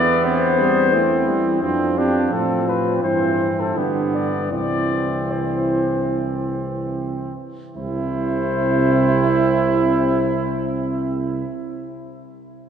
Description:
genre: classical, brass quintet.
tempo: 71-88 BPM.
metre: 4/4.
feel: rubato.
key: C major.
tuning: A4 = 445 Hz.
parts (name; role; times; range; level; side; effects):
dark cornet; melody; 0.0-11.5 s; G4 to D5; -24 LUFS; left 6 dB; none.
warm flugelhorn; second line; 0.0-11.5 s; B3 to E4; -23 LUFS; right 4 dB; none.
mellow euphonium; accompaniment; 0.0-11.5 s; C3 to C4; -26 LUFS; right 2 dB; none.
mellow tuba; bass; 0.0-11.5 s; C2 to A2; -25 LUFS; right 3 dB; none.
dark French horn; accompaniment; 0.2-11.5 s; C4 to F4; -25 LUFS; left 1 dB; none.
room: wet cathedral reverb, RT60 4.8 s.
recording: none.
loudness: -17 LUFS.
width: side -8 dB against mid.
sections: 0.0-7.8 A section; 7.8-11.1 B section.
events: slowing down 0.2-7.8.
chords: 0.0 C/E; 1.6 F; 3.0 C/G; 3.8 G; 4.5 C.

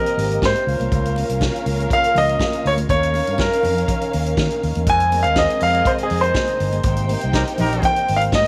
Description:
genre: disco.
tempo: 121 BPM.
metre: 4/4.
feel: straight.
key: Ab major.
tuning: A4 = 439 Hz.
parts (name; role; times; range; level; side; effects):
clear grand piano; melody; 0.0-8.5 s; Ab4 to Ab5; -21 LUFS; equal; none.
dark studio violin section; second line; 0.0-8.5 s; C4 to G5; -29 LUFS; equal; none.
mellow French horn section; sustained chords; 0.0-8.5 s; C3 to Bb4; -32 LUFS; equal; none.
vintage drum kit; drums; 0.1-8.4 s; hi-hat, kick drum, snare drum; -27 LUFS; equal; none.
fingered electric bass; bass; 0.2-8.4 s; G1 to Eb3; -24 LUFS; equal; none.
congas; percussion; 0.4-8.5 s; none; -33 LUFS; equal; none.
warm horn section; stabs; 7.3-7.9 s; Eb4 to Bb4; -27 LUFS; equal; none.
room: light reverb, small room ambience.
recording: none.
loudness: -19 LUFS.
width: mono.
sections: 0.0-8.5 A section.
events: grand piano solo 0.0-8.5.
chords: 0.0 Abmaj9; 0.7 Db6; 2.9 Eb7(no3); 4.9 Fm7; 6.8 Abmaj9.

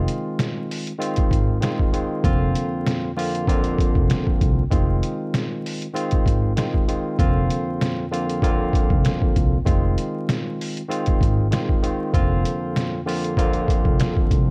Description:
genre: hip hop, boom-bap hip-hop.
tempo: 97 BPM.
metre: 4/4.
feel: swing 57% on 16ths.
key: F dorian.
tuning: A4 = 439 Hz.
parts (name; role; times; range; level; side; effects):
barky tine electric piano; accompaniment; 0.0-14.5 s; F2 to F4; -26 LUFS; equal; cassette tape, high-pass filter, low-pass filter.
upright bass; bass; 0.0-14.5 s; F1 to C2; -25 LUFS; equal; none.
trip hop sampler-style drum kit; drums; 0.1-14.5 s; hi-hat, kick drum, snare drum; -24 LUFS; equal; none.
room: little or no reverb.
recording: dark, warm production, vinyl crackle.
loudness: -22 LUFS.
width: mono.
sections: 0.0-14.5 A section.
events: none.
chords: 0.0 Fm7; 2.2 Bbadd9/F; 4.7 Fm7; 7.2 Bbadd9/F; 9.7 Fm7; 12.1 Bbadd9/F.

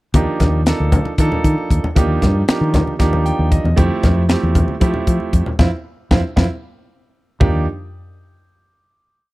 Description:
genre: electric jazz fusion.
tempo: 231 BPM (eighths).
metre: 7/8.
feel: straight.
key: Eb lydian.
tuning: A4 = 440 Hz.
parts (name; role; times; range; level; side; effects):
clear grand piano; accompaniment; 0.1-7.6 s; F3 to G5; -21 LUFS; right 3 dB; none.
fretless electric bass; bass; 0.1-7.7 s; D2 to F3; -17 LUFS; equal; none.
crisp fusion drum kit; drums; 0.1-7.5 s; hi-hat, kick drum, snare drum, toms; -16 LUFS; equal; none.
congas; percussion; 0.1-7.7 s; none; -22 LUFS; left 1 dB; none.
room: studio reverb.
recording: dry, close 1970s-style studio recording.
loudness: -14 LUFS.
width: side -19 dB against mid.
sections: 0.1-7.4 groove; 7.4-9.2 final chord.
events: grand piano fill 3.0-3.8, 6.6-7.4; band accent 5.6-7.4; drum fill 6.6-7.4.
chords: 0.1 Ebmaj9; 3.8 Fmaj9; 7.4 Ebmaj9.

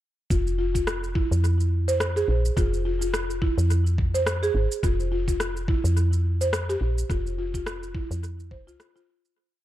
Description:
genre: organic downtempo.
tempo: 106 BPM.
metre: 4/4.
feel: swing 57% on 16ths.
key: F harmonic minor.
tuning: A4 = 440 Hz.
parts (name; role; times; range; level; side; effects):
buzzing marimba with soft mallets; arpeggios; 0.3-9.1 s; E4 to C5; -28 LUFS; right 1 dB; tape echo.
woody FM bass; bass; 0.3-8.8 s; F1 to F2; -25 LUFS; equal; none.
electronic kick drum; drums; 0.3-8.6 s; none; -26 LUFS; equal; small room reverb.
electronic shaker and rim click; drums; 0.3-9.3 s; none; -32 LUFS; equal; overdrive, small room reverb, tape echo.
room: light reverb.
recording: echo-heavy mix.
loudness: -22 LUFS.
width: side -14 dB against mid.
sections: 0.3-9.4 groove.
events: fade-out 6.3-9.4.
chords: none.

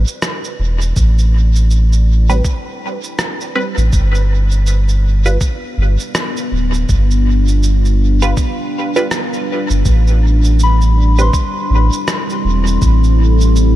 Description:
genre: ambient dub.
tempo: 81 BPM.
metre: 4/4.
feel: swing 60% on 16ths.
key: A minor.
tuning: A4 = 440 Hz.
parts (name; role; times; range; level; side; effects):
deep dark ambient pad; sustained chords; 0.0-13.8 s; G3 to D5; -22 LUFS; left 1 dB; chorus, built-in reverb.
warm sub bass; bass; 0.0-13.8 s; D1 to A1; -11 LUFS; equal; none.
electronic shaker and rim click; drums; 0.1-13.7 s; none; -24 LUFS; right 1 dB; dub echo.
electronic kick drum; drums; 1.0-13.0 s; none; -17 LUFS; equal; none.
filtered dub chord stab; stabs; 2.3-11.3 s; G3 to B4; -22 LUFS; right 2 dB; phaser, dub echo.
soft synth bell; arpeggios; 10.6-13.8 s; B5 to C6; -22 LUFS; left 2 dB; chorus, ping-pong delay.
room: little or no reverb.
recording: none.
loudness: -12 LUFS.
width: side -14 dB against mid.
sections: 0.0-13.8 A section.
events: fade-in on ambient pad 0.0-13.8.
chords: 0.0 Am9; 3.9 G7; 9.9 Am9.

